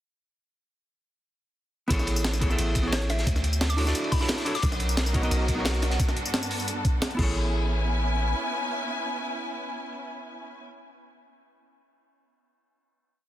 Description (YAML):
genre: liquid drum and bass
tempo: 176 BPM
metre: 4/4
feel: straight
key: A major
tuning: A4 = 442 Hz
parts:
  - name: hollow-body jazz guitar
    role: accompaniment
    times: 1.9-10.7 s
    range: B3 to E5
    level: -31 LUFS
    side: equal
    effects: digital delay
  - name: long sustained 808-style bass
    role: bass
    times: 1.9-8.3 s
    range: A1 to D2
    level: -26 LUFS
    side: equal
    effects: none
  - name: breakbeat sampler-style drum kit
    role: drums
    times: 1.9-7.3 s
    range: crash cymbal, hi-hat, snare drum, tambourine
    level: -31 LUFS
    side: equal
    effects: small room ambience
  - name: crunchy breakbeat drum kit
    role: drums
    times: 1.9-6.0 s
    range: hi-hat, ride cymbal, snare drum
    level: -35 LUFS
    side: equal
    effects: high-pass filter on cymbals, small room ambience, high-pass filter on hats, high-pass filter on snare, high-pass filter on room
  - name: electronic kick drum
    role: drums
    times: 1.9-7.3 s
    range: none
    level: -27 LUFS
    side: equal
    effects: small room ambience
  - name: hollow square pluck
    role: melody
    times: 2.9-4.7 s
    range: C#5 to D6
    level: -36 LUFS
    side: left 1 dB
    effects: chorus, digital delay
  - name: warm symphonic string section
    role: sustained chords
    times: 4.6-10.6 s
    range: G2 to G#5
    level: -31 LUFS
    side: equal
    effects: sidechain pumping
room: light reverb, small room ambience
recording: dense, heavily limited modern master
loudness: -24 LUFS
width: side -13 dB against mid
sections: 1.9-7.4 drop; 7.4-10.1 final hit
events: drop 1.9-7.4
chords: 1.9 Amaj9; 3.3 Dmaj9; 4.6 Bmaj9; 6.0 Gmaj9; 7.2 Amaj9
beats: | 1.90 2.25 2.59 2.93 | 3.27 3.61 3.95 4.29 | 4.63 4.97 5.31 5.65 | 6.00 6.34 6.68 7.02 | 7.36 7.70 8.04 8.38 | 8.72 9.06 9.40 9.74